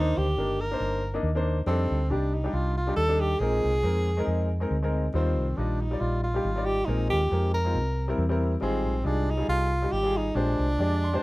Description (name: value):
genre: uptempo gospel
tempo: 138 BPM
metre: 4/4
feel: swing 56% on 8ths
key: unclear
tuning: A4 = 441 Hz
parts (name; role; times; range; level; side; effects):
- breathy tenor saxophone; melody; 0.0-11.2 s; C4 to Bb4; -28 LUFS; right 1 dB; none
- warm upright piano; accompaniment; 0.0-11.2 s; Ab2 to C6; -30 LUFS; left 2 dB; none
- hollow-body short-scale fingered electric bass; bass; 0.0-11.2 s; G1 to F2; -27 LUFS; equal; none
room: light reverb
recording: rough home demo mix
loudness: -24 LUFS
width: side -20 dB against mid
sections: 0.0-11.2 A section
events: upright piano fill 10.8-11.2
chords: 0.0 Cm9; 1.7 F13; 3.4 Bb9sus4; 5.1 Eb69; 6.9 Bb9sus4; 7.8 C7; 8.6 Fm9/Ab; 10.4 Bb13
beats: 0.38 0.81 1.24 | 1.68 2.11 2.54 2.98 | 3.41 3.84 4.28 4.71 | 5.14 5.58 6.01 6.45 | 6.88 7.32 7.75 8.19 | 8.62 9.06 9.49 9.93 | 10.36 10.80